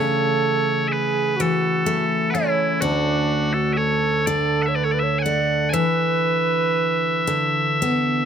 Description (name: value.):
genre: celtic folk, Celtic slow air.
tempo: 37-42 BPM (dotted quarters).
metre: 6/8.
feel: rubato.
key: unclear.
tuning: A4 = 441 Hz.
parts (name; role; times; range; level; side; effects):
loud bright bagpipes; melody; 0.0-8.3 s; E4 to G#5; -23 LUFS; left 1 dB; none.
bright wooden flute; second line; 0.0-7.8 s; D4 to D5; -24 LUFS; right 6 dB; none.
picked steel-string acoustic guitar; accompaniment; 0.0-8.3 s; D2 to C#4; -22 LUFS; left 2 dB; none.
room: light reverb.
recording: close, detailed microphones.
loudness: -18 LUFS.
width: side -8 dB against mid.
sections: 0.0-8.3 A section.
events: none.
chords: 0.0 F#m7/C#; 2.8 D5; 5.7 E5.